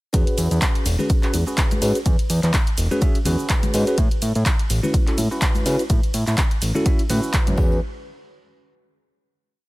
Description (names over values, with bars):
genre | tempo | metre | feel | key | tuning
filtered disco house | 125 BPM | 4/4 | swing 56% on 16ths | E major | A4 = 443 Hz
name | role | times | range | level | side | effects
bell-like tine electric piano | accompaniment | 0.1-7.8 s | C#4 to E5 | -25 LUFS | equal | phaser, sidechain pumping
fat analog bass | bass | 0.1-7.8 s | E1 to C#3 | -20 LUFS | equal | sidechain pumping
electronic kick drum | drums | 0.1-7.7 s | none | -20 LUFS | equal | none
punchy analog drum machine | drums | 0.1-7.6 s | handclaps, hi-hat, ride cymbal, shaker | -27 LUFS | equal | sidechain pumping on hats, sidechain pumping on cymbals, sidechain pumping on perc
tambourine and congas | percussion | 0.1-7.8 s | none | -32 LUFS | left 3 dB | sidechain pumping on perc
room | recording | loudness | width
digital ambience | none | -17 LUFS | side -20 dB against mid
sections
0.1-7.8 drop; 7.8-9.7 final hit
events
drop 0.1-7.8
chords
0.1 E6; 4.0 A69; 7.6 E6; 7.8 N.C.